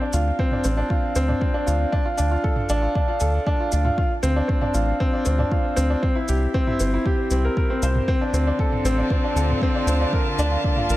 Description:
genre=piano and strings electronica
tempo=117 BPM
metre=4/4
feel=straight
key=D minor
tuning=A4 = 437 Hz
part: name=bright baby grand piano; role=riff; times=0.0-11.0 s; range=C4 to C5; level=-23 LUFS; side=equal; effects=digital delay
part: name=round analog bass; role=bass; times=0.1-11.0 s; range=G1 to D2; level=-21 LUFS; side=equal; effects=sidechain pumping
part: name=electronic shaker and toms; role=drums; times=0.1-11.0 s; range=none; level=-31 LUFS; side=right 1 dB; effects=studio reverb
part: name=electronic kick drum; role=drums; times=0.4-10.7 s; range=none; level=-23 LUFS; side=equal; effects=studio reverb
part: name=clear string quartet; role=sustained chords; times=8.1-11.0 s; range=D3 to A5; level=-30 LUFS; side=equal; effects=sidechain pumping
room=small room ambience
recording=none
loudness=-19 LUFS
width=side -16 dB against mid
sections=0.0-11.0 A section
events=none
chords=0.0 Dm7; 1.9 Dm; 4.0 Dm7; 6.0 C7; 8.1 Dm7; 10.1 Bbmaj7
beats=0.39 0.90 1.42 | 1.93 2.44 2.96 3.47 | 3.98 4.49 5.01 5.52 | 6.03 6.54 7.06 7.57 | 8.08 8.60 9.11 9.62 | 10.13 10.65

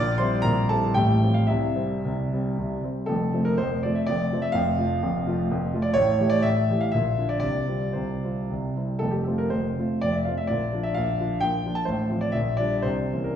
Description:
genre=classical, romantic triple-time dance for piano with dotted rhythms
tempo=104-137 BPM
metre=3/4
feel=rubato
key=F major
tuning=A4 = 441 Hz
part: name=warm grand piano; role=solo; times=0.0-13.4 s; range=F1 to D6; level=-22 LUFS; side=equal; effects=none
room=wet recital hall reverb, RT60 1.2 s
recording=heard from further back in the room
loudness=-22 LUFS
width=side -9 dB against mid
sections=0.0-3.1 A section; 3.1-13.4 B section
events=none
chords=0.0 C7/Bb; 0.9 F/A; 1.5 C; 3.1 F; 6.0 A5; 7.0 Bb; 7.4 Csus4; 8.5 C; 9.0 F; 10.5 Bb; 11.9 F/A; 12.3 Gm7/Bb; 12.8 C7b9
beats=0.44 0.95 | 1.47 2.04 2.57 | 3.08 3.59 4.09 | 4.56 5.03 5.51 | 5.96 6.45 6.95 | 7.43 7.97 8.51 | 9.01 9.52 10.02 | 10.48 10.95 11.42 | 11.87 12.34 12.85

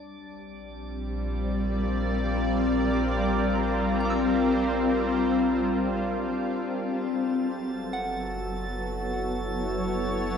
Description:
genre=ambient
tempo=free time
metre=none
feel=none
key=unclear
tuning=A4 = 439 Hz
part: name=shimmering ambient pad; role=sustained chords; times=1.0-10.4 s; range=F#3 to D5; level=-26 LUFS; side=left 2 dB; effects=chorus, built-in reverb
part: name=soft synth bell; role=arpeggios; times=0.0-10.4 s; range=D5 to E6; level=-38 LUFS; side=right 2 dB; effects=chorus, phaser, tape echo
part: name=deep rumbling drone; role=bass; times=0.7-10.4 s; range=F#1 to A#1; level=-34 LUFS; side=right 1 dB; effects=built-in reverb, phaser
part: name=drifting glass-harmonics texture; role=texture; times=0.0-10.4 s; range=D4 to A6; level=-38 LUFS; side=right 1 dB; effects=chorus, built-in reverb
room=wet concert hall reverb, RT60 2.3 s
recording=dark, warm production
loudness=-24 LUFS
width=side -7 dB against mid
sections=0.0-10.4 A section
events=fade-in on synth bell 0.0-10.4; fade-in on synth texture 0.0-10.4; fade-out on synth drone 0.0-10.4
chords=0.0 A#add9; 6.9 F#m7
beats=free time

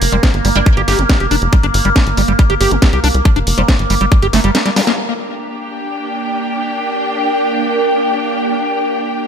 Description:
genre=psychedelic trance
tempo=139 BPM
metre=4/4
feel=straight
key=G minor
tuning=A4 = 441 Hz
part: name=overtone-sweeping drone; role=sustained chords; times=0.0-9.3 s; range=Bb3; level=-19 LUFS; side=right 2 dB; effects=chorus, built-in reverb, phaser, vintage 12-bit sampler grit, sidechain pumping
part: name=tight sequencer bass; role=bass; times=0.0-4.5 s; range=F1 to C2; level=-16 LUFS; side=equal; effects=none
part: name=garage drum kit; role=drums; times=0.0-5.0 s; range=hi-hat, snare drum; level=-19 LUFS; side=equal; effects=low-pass filter on hats, studio reverb, low-pass filter on snare
part: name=resonant blip pluck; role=second line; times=0.1-3.8 s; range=C4 to D4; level=-24 LUFS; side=right 1 dB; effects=phaser, ensemble chorus, sidechain pumping, high-pass filter, digital delay
part: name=liquid acid bass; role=riff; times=0.1-4.9 s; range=F3 to G4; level=-18 LUFS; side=moving between left 5 dB and right 6 dB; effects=chorus, auto-pan, sidechain pumping, digital delay
part: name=electronic kick drum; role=drums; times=0.2-4.2 s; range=none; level=-11 LUFS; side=equal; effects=studio reverb
part: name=zap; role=sound effects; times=4.8-4.9 s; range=none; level=-26 LUFS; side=equal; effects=none
part: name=muted studio string section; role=texture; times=5.0-9.3 s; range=D4 to G5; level=-18 LUFS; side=left 1 dB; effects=sidechain pumping
room=light reverb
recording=none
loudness=-12 LUFS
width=side -7 dB against mid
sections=0.0-5.0 A section; 5.0-9.3 B section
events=drum fill 4.7-5.0; band accent 4.9; filter sweep on synth drone 5.0-9.3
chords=0.0 G5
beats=0.23 0.66 1.09 | 1.53 1.96 2.39 2.82 | 3.25 3.69 4.12 4.55 | 4.98 5.41 5.84 6.28 | 6.71 7.14 7.57 8.00 | 8.43 8.87

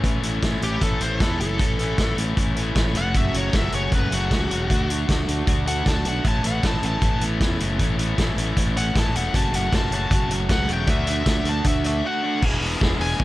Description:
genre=indie rock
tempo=155 BPM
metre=4/4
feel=straight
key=A major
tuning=A4 = 440 Hz
part: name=electric guitar through a small old amp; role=riff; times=0.0-13.2 s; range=E2 to F#4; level=-29 LUFS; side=right 5 dB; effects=lush chorus
part: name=overdriven electric guitar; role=riff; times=0.0-13.2 s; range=E3 to G#4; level=-28 LUFS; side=left 7 dB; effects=none
part: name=modern bright fingered electric bass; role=bass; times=0.0-13.2 s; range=E1 to E2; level=-26 LUFS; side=equal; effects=none
part: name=vintage drum kit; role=drums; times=0.0-13.2 s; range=crash cymbal, hi-hat, kick drum, snare drum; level=-23 LUFS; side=equal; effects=none
part: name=bluesy overdriven lead guitar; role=melody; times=0.6-13.2 s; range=F#4 to A5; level=-28 LUFS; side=left 1 dB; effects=distortion
room=little or no reverb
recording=none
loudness=-19 LUFS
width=side -17 dB against mid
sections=0.0-12.4 A section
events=lead electric guitar solo 0.0-12.4; break 12.0-12.4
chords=0.0 Aadd9; 3.1 F#m; 4.7 D; 6.2 Aadd9; 9.3 F#m; 10.9 D; 12.4 E7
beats=| 0.04 0.43 0.81 1.20 | 1.59 1.98 2.37 2.76 | 3.15 3.54 3.92 4.31 | 4.70 5.09 5.47 5.86 | 6.25 6.64 7.02 7.41 | 7.80 8.18 8.57 8.96 | 9.34 9.73 10.11 10.50 | 10.88 11.27 11.65 12.04 | 12.42 12.80 13.19

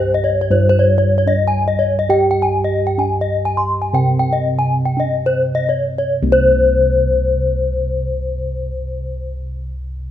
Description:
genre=Balinese gamelan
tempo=50-84 BPM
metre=4/4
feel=straight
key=C pelog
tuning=A4 = 440 Hz
part: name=gamelan-type bronze metallophone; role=arpeggios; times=0.0-9.3 s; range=C5 to C6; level=-16 LUFS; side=left 2 dB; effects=none
part: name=gamelan-type bossed gongs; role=bass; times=0.0-9.2 s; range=C2 to G4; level=-18 LUFS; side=right 1 dB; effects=none
room=light reverb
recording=close, detailed microphones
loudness=-14 LUFS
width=side -11 dB against mid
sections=0.0-6.1 A section; 6.1-10.1 B section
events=slowing down 0.0-6.1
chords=none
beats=0.50 1.27 | 2.09 2.98 3.93 4.97 | 6.12 7.32 8.51

